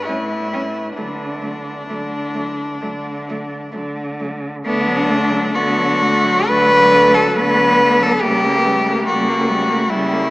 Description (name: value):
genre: classical, lyrical piece for cello ensemble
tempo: 63-72 BPM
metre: 4/4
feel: rubato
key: D major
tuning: A4 = 435 Hz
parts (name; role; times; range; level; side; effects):
- rich cello; melody; 0.0-10.3 s; D4 to B4; -16 LUFS; left 1 dB; none
- rich cello; second line; 0.1-10.3 s; F#3 to C#4; -24 LUFS; right 1 dB; none
- rich cello; accompaniment; 0.1-10.3 s; F#3 to B3; -22 LUFS; equal; none
- rich cello; bass; 0.1-10.3 s; A2 to D3; -23 LUFS; right 1 dB; none
room: wet cathedral reverb, RT60 6.7 s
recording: in a vast, echoing space, small speaker sound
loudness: -14 LUFS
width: side -19 dB against mid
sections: 0.0-4.7 A section; 4.7-10.3 B section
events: none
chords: 0.1 A7(no3); 1.0 D; 8.2 C#dim7(no3)